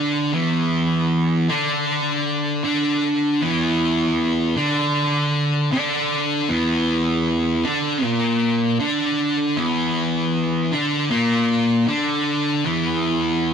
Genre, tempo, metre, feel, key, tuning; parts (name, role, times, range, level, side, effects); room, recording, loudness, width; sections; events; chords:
rock; 78 BPM; 4/4; straight; A4 = 440 Hz
sludgy distorted guitar; solo; 0.0-13.5 s; E2 to D4; -18 LUFS; equal; overdrive
wet studio reverb, RT60 0.5 s; rough rehearsal-room recording, warm saturation; -18 LUFS; side -7 dB against mid
0.3-13.5 A section
0.3 Dsus2/E